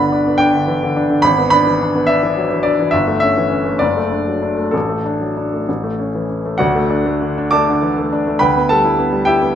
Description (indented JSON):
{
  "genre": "classical, virtuoso piano study",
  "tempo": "63-72 BPM (dotted quarters)",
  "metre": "6/8",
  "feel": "rubato",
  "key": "D major",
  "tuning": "A4 = 440 Hz",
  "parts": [
    { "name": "warm baby grand piano", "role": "solo", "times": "0.0-9.6 s", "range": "F#1 to D6", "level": "-14 LUFS", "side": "equal", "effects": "none" }
  ],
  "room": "wet recital hall reverb, RT60 1.4 s",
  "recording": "minimal, uncompressed stereo recording",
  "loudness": "-14 LUFS",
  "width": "side -9 dB against mid",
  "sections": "0.0-6.6 A section; 6.6-9.6 B section",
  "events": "none",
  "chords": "0.0 G; 1.2 E7/G#; 2.9 A7/G; 3.8 D/F#; 4.7 D/A; 5.7 A; 6.6 D; 8.4 Em7/D"
}